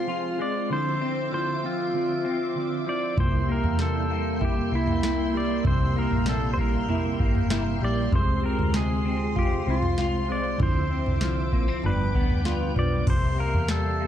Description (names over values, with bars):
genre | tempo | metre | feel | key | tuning
dream pop | 97 BPM | 4/4 | straight | C mixolydian | A4 = 440 Hz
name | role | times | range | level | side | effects
pedal steel guitar | melody | 0.0-14.1 s | E4 to D5 | -30 LUFS | equal | digital delay
mellow electric guitar | accompaniment | 0.0-13.1 s | G2 to Ab4 | -32 LUFS | right 6 dB | harmonic tremolo, ensemble chorus
ensemble organ-string | sustained chords | 0.0-14.1 s | Ab3 to D6 | -32 LUFS | right 1 dB | ensemble chorus
semi-hollow electric guitar | arpeggios | 0.0-14.1 s | G2 to F4 | -31 LUFS | left 5 dB | ensemble chorus, digital delay
vintage muted fingered electric bass | bass | 3.2-14.1 s | G1 to E2 | -28 LUFS | equal | none
booming analog drum machine | drums | 3.2-13.8 s | crash cymbal, kick drum, snare drum, toms | -27 LUFS | equal | none
room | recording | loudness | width
light reverb, digital ambience | dark, warm production | -22 LUFS | side -10 dB against mid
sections
0.0-13.1 A section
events
none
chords
0.0 Fm/C; 0.7 Dm9; 3.2 C7; 8.1 Fm/C; 10.6 Dm9; 11.8 G7; 13.1 C7